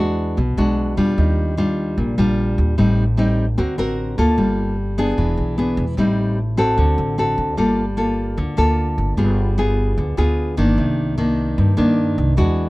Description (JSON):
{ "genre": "bossa nova", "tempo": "150 BPM", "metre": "4/4", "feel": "straight", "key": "G minor", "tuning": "A4 = 441 Hz", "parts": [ { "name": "nylon-string guitar", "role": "accompaniment", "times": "0.0-12.7 s", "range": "G2 to Bb4", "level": "-18 LUFS", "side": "equal", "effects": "none" }, { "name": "upright bass", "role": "bass", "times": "0.0-12.7 s", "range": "E1 to G2", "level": "-21 LUFS", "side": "equal", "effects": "none" } ], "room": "little or no reverb", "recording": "close, detailed microphones", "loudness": "-16 LUFS", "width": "side -20 dB against mid", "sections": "0.0-7.6 A section; 7.6-12.7 A section", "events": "none", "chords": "0.0 E9; 1.2 Ebmaj9; 2.8 Am7b5; 3.6 D7b13; 4.4 Gm9; 5.2 E7; 6.0 Am7b5; 6.8 D7; 7.6 Gm9; 9.2 G7b9; 10.8 Cm9", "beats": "0.38 0.78 | 1.18 1.58 1.98 2.38 | 2.78 3.18 3.58 3.98 | 4.38 4.78 5.18 5.58 | 5.98 6.38 6.78 7.18 | 7.58 7.98 8.38 8.78 | 9.18 9.58 9.98 10.38 | 10.78 11.18 11.58 11.98 | 12.38" }